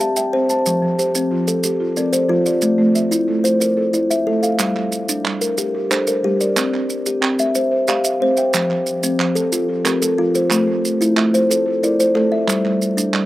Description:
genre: southern african traditional, mbira-style interlocking cycle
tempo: 122 BPM (dotted quarters)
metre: 12/8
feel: straight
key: G dorian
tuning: A4 = 440 Hz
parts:
  - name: buzzing marimba with soft mallets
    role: arpeggios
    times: 0.0-13.3 s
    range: F3 to G5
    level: -23 LUFS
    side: right 3 dB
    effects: none
  - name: kalimba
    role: arpeggios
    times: 0.0-13.3 s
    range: F3 to A5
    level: -17 LUFS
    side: left 1 dB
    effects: slapback echo
  - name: maracas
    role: percussion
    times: 0.0-13.1 s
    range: none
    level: -24 LUFS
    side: right 4 dB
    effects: none
  - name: group handclap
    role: percussion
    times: 4.6-13.3 s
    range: none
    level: -22 LUFS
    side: right 5 dB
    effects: none
room: light reverb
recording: recorded outdoors, with no room sound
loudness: -15 LUFS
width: side -16 dB against mid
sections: 0.0-4.6 A section; 4.6-13.3 B section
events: none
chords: 0.0 C; 0.7 F; 2.6 Am; 4.6 Gm; 6.6 C; 8.5 F; 10.5 Am; 12.5 G5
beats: 0.16 | 0.65 1.14 1.64 2.13 | 2.62 3.12 3.61 4.10 | 4.59 5.09 5.58 6.07 | 6.57 7.06 7.55 8.05 | 8.54 9.03 9.53 10.02 | 10.51 11.00 11.50 11.99 | 12.48 12.97

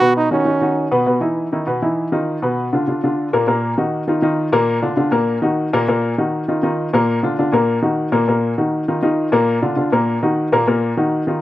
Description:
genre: latin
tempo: 200 BPM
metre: 4/4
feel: straight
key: Eb harmonic minor from 3.5 s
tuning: A4 = 440 Hz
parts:
  - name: brilliant trombone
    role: melody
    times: 0.0-0.9 s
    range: C#4 to Gb4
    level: -16 LUFS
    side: right 3 dB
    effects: slapback echo
  - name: warm upright piano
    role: accompaniment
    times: 0.0-11.4 s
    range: Bb2 to B4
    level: -16 LUFS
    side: left 1 dB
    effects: none
room: little or no reverb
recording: recorded outdoors, with no room sound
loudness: -15 LUFS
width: side -15 dB against mid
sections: 0.0-3.5 A section; 3.5-11.4 B section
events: none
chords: 0.0 Badd9; 1.1 E5; 2.3 Bdim; 2.9 Bb; 3.5 Ebm; 4.1 Bbsus4; 4.7 Bb; 5.3 Ebm; 6.5 Bbsus4; 7.1 Bb; 7.7 Ebm; 8.9 Bbsus4; 9.5 Bb; 10.1 Ebm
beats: 0.17 0.47 0.77 | 1.07 1.37 1.67 1.97 | 2.27 2.57 2.88 3.18 | 3.48 3.78 4.08 4.38 | 4.68 4.98 5.28 5.58 | 5.88 6.18 6.48 6.78 | 7.08 7.38 7.68 7.98 | 8.28 8.58 8.88 9.18 | 9.48 9.78 10.07 10.37 | 10.67 10.97 11.27

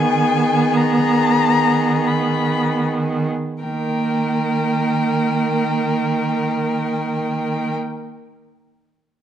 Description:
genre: classical, slow romantic movement for string quartet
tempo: free time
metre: none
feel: none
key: Eb major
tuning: A4 = 439 Hz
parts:
  - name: rich violin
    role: melody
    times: 0.0-7.7 s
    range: G5 to Cb6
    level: -22 LUFS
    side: left 7 dB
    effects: none
  - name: rich violin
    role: second line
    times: 0.0-7.7 s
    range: Ab4 to Bb4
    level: -26 LUFS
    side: left 1 dB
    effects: none
  - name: clear viola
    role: accompaniment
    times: 0.0-7.7 s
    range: Bb3 to Cb4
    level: -20 LUFS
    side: right 3 dB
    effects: none
  - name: rich cello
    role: bass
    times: 0.0-7.7 s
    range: Eb3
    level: -23 LUFS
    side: right 3 dB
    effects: none
room: moderate recital hall reverb, RT60 1.5 s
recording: dark, warm production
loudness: -16 LUFS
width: side -10 dB against mid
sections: 0.0-3.6 A section; 3.6-8.1 B section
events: slowing down 0.0-3.6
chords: 0.0 Abm/Eb; 3.6 Eb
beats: free time

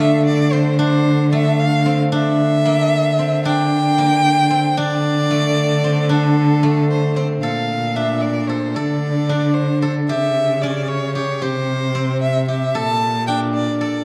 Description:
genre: contemporary instrumental, chamber music in an uneven meter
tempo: 226 BPM (eighths)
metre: 5/8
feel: straight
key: unclear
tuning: A4 = 442 Hz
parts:
  - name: clear violin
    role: melody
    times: 0.0-14.0 s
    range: A4 to A5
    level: -23 LUFS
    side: equal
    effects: none
  - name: steel-string zither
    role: arpeggios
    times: 0.0-14.0 s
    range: A3 to A4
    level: -23 LUFS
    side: equal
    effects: none
  - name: muted cello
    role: bass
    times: 0.0-14.0 s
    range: Bb2 to D3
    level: -21 LUFS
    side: equal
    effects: none
room: moderate concert hall reverb, RT60 2.1 s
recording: dark, warm production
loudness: -17 LUFS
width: mono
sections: 0.0-7.4 A section; 7.4-14.0 B section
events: none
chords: 0.0 D5; 2.1 Gm/D; 7.4 Bbmaj7; 8.8 D5; 10.1 C#dim; 11.4 C5; 12.7 Bbmaj7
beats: 0.00 0.26 0.53 | 0.79 1.06 1.32 1.59 1.86 | 2.12 2.39 2.65 2.92 3.18 | 3.45 3.71 3.98 4.25 4.51 | 4.78 5.04 5.31 5.57 5.84 | 6.11 6.37 6.64 6.90 7.17 | 7.43 7.70 7.96 8.23 8.49 | 8.76 9.03 9.29 9.56 9.82 | 10.09 10.36 10.62 10.89 11.15 | 11.42 11.68 11.95 12.21 12.48 | 12.75 13.01 13.28 13.54 13.81

